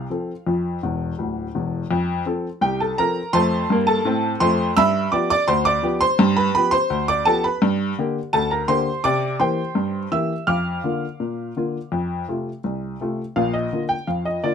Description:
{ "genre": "ragtime piano", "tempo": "84 BPM", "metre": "2/4", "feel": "straight", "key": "F major, Bb major from 7.6 s", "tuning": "A4 = 440 Hz", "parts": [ { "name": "clear upright piano", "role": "solo", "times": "0.0-14.5 s", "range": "D1 to F6", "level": "-19 LUFS", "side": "equal", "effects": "none" } ], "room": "light reverb", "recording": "close, detailed microphones", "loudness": "-19 LUFS", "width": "side -7 dB against mid", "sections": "0.0-1.9 A section; 1.9-13.4 B section; 13.4-14.5 C section", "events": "upright piano fill 0.8-1.9", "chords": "0.0 N.C.; 1.9 F; 4.8 G7; 7.6 Gm; 9.0 C7; 10.5 Bb/F; 11.9 F; 13.4 Bb" }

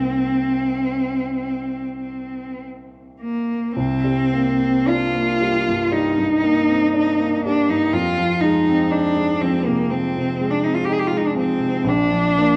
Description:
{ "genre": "classical, impressionist duo for cello and grand piano", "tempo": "52-62 BPM", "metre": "4/4", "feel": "rubato", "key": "C minor", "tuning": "A4 = 440 Hz", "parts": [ { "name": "rich cello", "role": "melody", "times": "0.0-12.6 s", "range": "Bb3 to Ab4", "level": "-21 LUFS", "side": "equal", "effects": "none" }, { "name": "warm concert grand piano", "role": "accompaniment", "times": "0.0-12.6 s", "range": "Bb1 to Eb4", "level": "-25 LUFS", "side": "equal", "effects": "none" } ], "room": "moderate concert hall reverb, RT60 2.0 s", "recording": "worn, warbling old tape, cassette tape, warbly pitch drift, nothing above 11.0 kHz", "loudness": "-20 LUFS", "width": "mono", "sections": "0.0-3.8 A section; 3.8-12.6 A section", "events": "none", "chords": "0.0 Cm7; 3.8 Cm9; 7.9 Fm7; 11.9 Bb" }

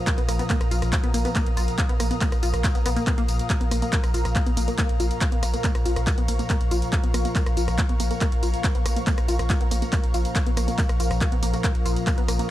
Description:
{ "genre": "driving peak-time techno", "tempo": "140 BPM", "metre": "4/4", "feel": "straight", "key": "Bb minor", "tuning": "A4 = 441 Hz", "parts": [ { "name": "metallic inharmonic drone", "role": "drone", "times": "0.0-12.5 s", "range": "Bb2 to F3", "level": "-32 LUFS", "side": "left 1 dB", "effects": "chorus, built-in reverb, sidechain pumping" }, { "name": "ethereal airy pad", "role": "texture", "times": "0.0-12.5 s", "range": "Bb4 to Eb6", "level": "-32 LUFS", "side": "equal", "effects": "ensemble chorus, built-in reverb, sidechain pumping" }, { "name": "tight sequenced synth", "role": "riff", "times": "0.1-12.4 s", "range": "Bb3 to F4", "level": "-31 LUFS", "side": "equal", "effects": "chorus, tube saturation, sidechain pumping, analog delay" }, { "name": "electronic kick drum", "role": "drums", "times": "0.1-12.2 s", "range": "none", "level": "-24 LUFS", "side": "equal", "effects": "overdrive" }, { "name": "punchy analog drum machine", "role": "drums", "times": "0.1-12.5 s", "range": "handclaps, hi-hat, ride cymbal, rim click, tambourine", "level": "-30 LUFS", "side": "equal", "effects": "overdrive, sidechain pumping on hats, sidechain pumping on cymbals, sidechain pumping on perc" }, { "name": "saturated sub bass", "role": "bass", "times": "0.2-12.4 s", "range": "Bb1", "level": "-26 LUFS", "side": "equal", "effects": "tube saturation, sidechain pumping, low-pass filter" } ], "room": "digital ambience", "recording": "dry, gritty hardware recording, cassette tape", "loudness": "-20 LUFS", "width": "side -14 dB against mid", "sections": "0.0-12.5 A section", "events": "none", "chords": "0.0 Bbm" }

